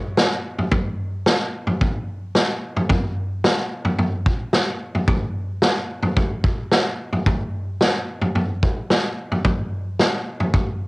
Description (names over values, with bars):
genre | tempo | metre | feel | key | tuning
dream pop | 110 BPM | 4/4 | straight | none | none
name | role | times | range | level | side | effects
vintage drum kit | drums | 0.2-10.7 s | kick drum, snare drum, toms | -19 LUFS | equal | cassette tape
room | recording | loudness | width
moderate small room reverb, RT60 0.5 s | home recording on cassette | -19 LUFS | side -23 dB against mid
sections
0.0-10.9 A section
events
none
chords
none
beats
0.17 | 0.72 1.26 1.81 2.35 | 2.90 3.44 3.99 4.54 | 5.08 5.63 6.17 6.72 | 7.26 7.81 8.35 8.90 | 9.44 9.99 10.54